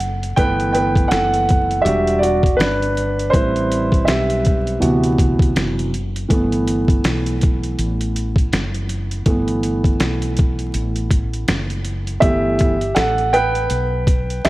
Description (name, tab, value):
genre	hip hop, jazz-hop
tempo	81 BPM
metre	4/4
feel	swing 59% on 16ths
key	G major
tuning	A4 = 441 Hz
part	woody fretless electric bass	bass	0.0-14.5 s	E1 to D2	-22 LUFS	equal	analog chorus
part	trip hop sampler-style drum kit	drums	0.0-14.5 s	hi-hat, kick drum, snare drum	-19 LUFS	equal	none
part	dark baby grand piano	accompaniment	0.4-14.5 s	C3 to G5	-18 LUFS	right 1 dB	none
room	light reverb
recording	vinyl crackle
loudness	-15 LUFS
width	side -18 dB against mid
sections	0.0-12.2 A section; 12.2-14.5 B section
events	grand piano solo 0.0-12.2, 12.2-14.5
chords	0.4 G69; 1.9 Em7; 3.3 Am9; 4.8 D13; 6.3 G69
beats	| 0.37 1.11 1.85 2.59 | 3.33 4.08 4.82 5.56 | 6.30 7.04 7.78 8.52 | 9.26 10.00 10.74 11.48 | 12.22 12.96 13.71 14.45